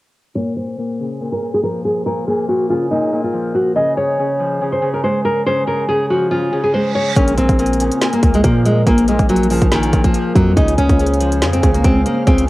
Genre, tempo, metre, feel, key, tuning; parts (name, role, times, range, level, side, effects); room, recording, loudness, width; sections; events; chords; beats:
hip hop, trap; 141 BPM; 4/4; half-time; Bb minor; A4 = 440 Hz
nylon-string guitar; melody; 0.4-12.4 s; Eb3 to Eb5; -17 LUFS; equal; low-pass filter, cassette tape
Celtic harp; accompaniment; 0.4-12.5 s; Bb2 to Ab3; -20 LUFS; left 1 dB; low-pass filter, cassette tape
reverse cymbal; sound effects; 6.7-7.2 s; -27 LUFS; right 8 dB
glassy FM pad; sustained chords; 7.2-12.5 s; Bb3 to F5; -25 LUFS; left 2 dB; ensemble chorus, built-in reverb, cassette tape
hard-hitting 808-style bass; bass; 7.2-12.5 s; Bb1 to Bb2; -17 LUFS; equal
trap drum kit; drums; 7.2-12.5 s; hi-hat, kick drum, snare drum; -16 LUFS; equal
digital ambience; home recording on cassette; -13 LUFS; side -18 dB against mid
0.4-7.2 A section; 7.2-12.5 B section
filter sweep 0.4-7.2; reverse cymbal 6.7-7.2
0.4 Bbm; 3.8 Db; 7.2 Bbm; 10.6 Dbmaj7
| 0.36 0.78 1.21 1.63 | 2.06 2.48 2.91 3.33 | 3.76 4.19 4.61 5.04 | 5.46 5.89 6.31 6.74 | 7.16 7.59 8.02 8.44 | 8.87 9.29 9.72 10.14 | 10.57 10.99 11.42 11.85 | 12.27